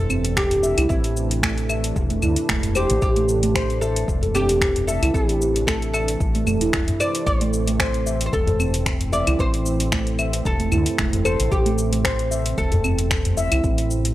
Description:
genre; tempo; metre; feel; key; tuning
organic downtempo; 113 BPM; 4/4; swing 54% on 16ths; A minor pentatonic; A4 = 440 Hz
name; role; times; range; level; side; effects
oud; melody; 0.0-14.1 s; E4 to D5; -25 LUFS; equal; tape echo
warm analog pad; sustained chords; 0.0-14.1 s; C3 to D4; -32 LUFS; equal; chorus, sidechain pumping
handpan; arpeggios; 0.0-14.1 s; A3 to E5; -25 LUFS; right 2 dB; tape echo
woody fretless electric bass; bass; 0.0-14.1 s; E1 to D2; -24 LUFS; equal; transformer saturation, ensemble chorus, sidechain pumping
afro-pop drum kit; drums; 0.1-14.1 s; claves, finger snaps, hi-hat, shaker; -26 LUFS; left 1 dB; small room ambience
udu; percussion; 0.1-13.4 s; none; -25 LUFS; left 1 dB; none
electronic kick drum; drums; 0.4-13.8 s; none; -25 LUFS; equal; small room ambience
room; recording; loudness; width
light reverb; dry, gritty hardware recording; -18 LUFS; side -15 dB against mid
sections
0.0-14.1 A section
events
none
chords
0.0 Am

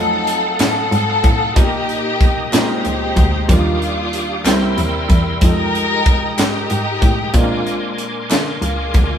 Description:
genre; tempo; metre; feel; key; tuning
slow gospel; 62 BPM (dotted quarters); 6/8; straight; unclear; A4 = 440 Hz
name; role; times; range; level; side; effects
warm studio string section; melody; 0.0-9.2 s; G3 to Bb4; -20 LUFS; left 2 dB; none
clear concert grand piano; accompaniment; 0.0-9.2 s; Bb2 to C5; -24 LUFS; right 1 dB; none
bright tonewheel organ; sustained chords; 0.0-9.2 s; Ab3 to E6; -24 LUFS; equal; fast rotary speaker, chorus vibrato
muted cello; bass; 0.0-9.2 s; C2 to D3; -20 LUFS; equal; none
crisp fusion drum kit; drums; 0.3-9.1 s; hi-hat, kick drum, snare drum; -16 LUFS; equal; none
group handclap; percussion; 0.6-8.6 s; none; -28 LUFS; left 3 dB; none
room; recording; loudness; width
moderate stone room reverb, RT60 1.1 s; band playing live in one room; -14 LUFS; side -8 dB against mid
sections
0.0-9.2 A section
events
none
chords
0.0 F7b9; 1.6 Eb/Bb; 2.5 Bb9sus4; 3.5 Ebmaj9; 4.5 C7; 5.4 Fm11; 7.3 Bb9

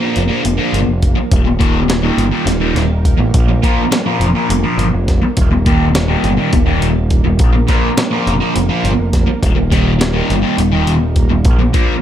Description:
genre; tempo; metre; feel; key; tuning
psychedelic rock; 207 BPM (eighths); 7/8; straight; Eb major; A4 = 441 Hz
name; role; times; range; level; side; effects
string machine, cellos; sustained chords; 0.0-12.0 s; F3 to Bb4; -22 LUFS; right 4 dB; ensemble chorus
thick fuzz guitar; riff; 0.0-11.9 s; Eb2 to Bb3; -16 LUFS; left 1 dB; distortion, phaser
growling picked electric bass; bass; 0.2-11.7 s; Eb1 to Bb1; -16 LUFS; equal; overdrive
breakbeat sampler-style drum kit; drums; 0.2-11.9 s; hi-hat, kick drum, snare drum; -16 LUFS; equal; none
room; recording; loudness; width
digital ambience; none; -11 LUFS; side -10 dB against mid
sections
0.0-12.0 A section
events
none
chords
0.0 Bb; 1.3 Eb; 3.3 Bb; 5.4 Eb; 7.4 Bb; 9.4 Eb; 11.5 Bb

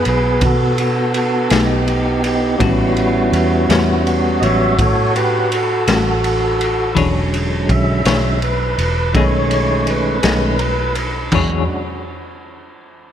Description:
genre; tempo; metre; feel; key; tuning
slow blues; 55 BPM (dotted quarters); 12/8; straight; unclear; A4 = 440 Hz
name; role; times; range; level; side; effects
tonewheel organ; sustained chords; 0.0-11.8 s; D3 to E5; -17 LUFS; right 1 dB; slow rotary speaker
vintage muted fingered electric bass; bass; 0.0-11.7 s; E1 to B2; -20 LUFS; equal; none
raw garage drum kit; drums; 0.1-11.5 s; crash cymbal, kick drum, ride cymbal, snare drum, toms; -21 LUFS; equal; none
clean electric guitar; accompaniment; 1.5-11.6 s; A2 to C#5; -23 LUFS; left 6 dB; tremolo, slapback echo
room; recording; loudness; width
moderate lush hall reverb, RT60 2.9 s; big arena sound; -14 LUFS; side -9 dB against mid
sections
0.0-11.3 A section; 11.3-13.1 B section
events
tonewheel organ solo 0.0-11.3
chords
0.0 B13; 2.6 A13; 7.0 E13; 9.1 B13; 11.3 E13

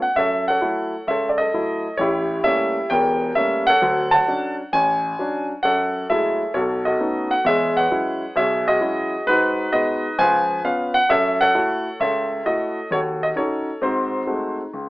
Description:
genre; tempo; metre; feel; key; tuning
solo jazz; 132 BPM; 4/4; swing 68% on 8ths; unclear; A4 = 444 Hz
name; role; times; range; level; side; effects
warm concert grand piano; solo; 0.0-14.9 s; E1 to A5; -18 LUFS; equal; none
room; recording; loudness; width
light reverb; AM radio sound; -18 LUFS; side -18 dB against mid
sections
0.2-14.7 A section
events
none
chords
0.2 F#m7; 2.0 A7b9; 3.8 Dmaj7; 5.6 F#m9; 6.5 B9; 7.4 E69; 9.3 G#m7; 10.2 C#7; 11.1 F#m7; 12.9 D#m7b5; 13.8 G#7b9

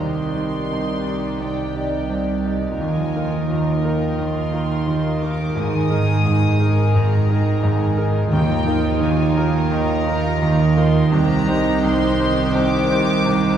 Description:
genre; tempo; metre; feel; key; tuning
cinematic; 86 BPM; 4/4; rubato; Eb major; A4 = 440 Hz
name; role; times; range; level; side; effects
rich studio violin section; melody; 0.0-13.6 s; G5 to Eb6; -29 LUFS; left 3 dB; none
warm studio violin section; second line; 0.0-13.6 s; F4 to D5; -28 LUFS; left 4 dB; none
bright concert grand piano; accompaniment; 0.0-13.6 s; Ab1 to D5; -22 LUFS; equal; none
warm studio viola section; accompaniment; 0.0-13.6 s; Eb3 to Eb4; -26 LUFS; right 4 dB; none
concert harp; arpeggios; 0.0-13.6 s; Ab2 to D6; -26 LUFS; equal; none
dark studio cello section; bass; 0.0-13.6 s; C2 to Ab2; -23 LUFS; right 2 dB; none
rich studio double bass section; bass; 0.0-13.6 s; Ab1 to Eb2; -25 LUFS; right 4 dB; none
timpani; percussion; 8.3-9.3 s; Eb3; -26 LUFS; right 1 dB; none
room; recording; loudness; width
wet scoring stage reverb, RT60 1.4 s; heard from further back in the room, studio ambience; -17 LUFS; side -9 dB against mid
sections
0.0-13.6 A section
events
none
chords
0.0 Cmadd9; 2.8 Ebsus2; 5.6 Absus2; 8.3 Ebsus2; 11.1 Cmadd9

